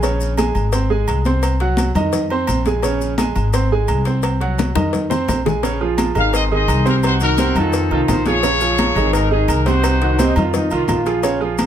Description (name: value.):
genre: latin, salsa.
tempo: 172 BPM.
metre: 4/4.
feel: straight.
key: Bb minor.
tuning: A4 = 440 Hz.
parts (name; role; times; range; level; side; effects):
bright grand piano; accompaniment; 0.0-11.7 s; C3 to C6; -19 LUFS; right 4 dB; none.
upright bass; bass; 0.0-11.7 s; Ab1 to F2; -20 LUFS; left 1 dB; none.
agogo bells and timbales; percussion; 0.0-11.7 s; none; -27 LUFS; right 4 dB; none.
congas; percussion; 0.0-11.7 s; none; -24 LUFS; left 3 dB; none.
cowbell and bongos; percussion; 0.0-11.7 s; none; -26 LUFS; left 8 dB; none.
maracas; percussion; 0.0-11.7 s; none; -33 LUFS; left 6 dB; none.
bright horn section; melody; 6.2-10.4 s; C4 to F5; -20 LUFS; left 2 dB; none.
warm trombone section; second line; 10.0-11.5 s; D4 to F4; -23 LUFS; left 2 dB; none.
room: light reverb.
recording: close, detailed microphones.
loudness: -15 LUFS.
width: side -10 dB against mid.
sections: 0.0-5.6 A section; 5.6-11.7 B section.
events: drum fill 4.6-5.6.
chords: 0.0 Bbm7; 0.7 Ab; 1.4 Cdim; 2.1 F5; 2.8 Bbm7; 3.5 Ab; 4.2 Cdim; 4.9 F5; 5.6 Bbm7; 6.3 Ab; 7.0 Cm7b5; 7.7 F5; 8.4 Bbm7; 9.1 Ab; 9.8 Cdim; 10.5 F5.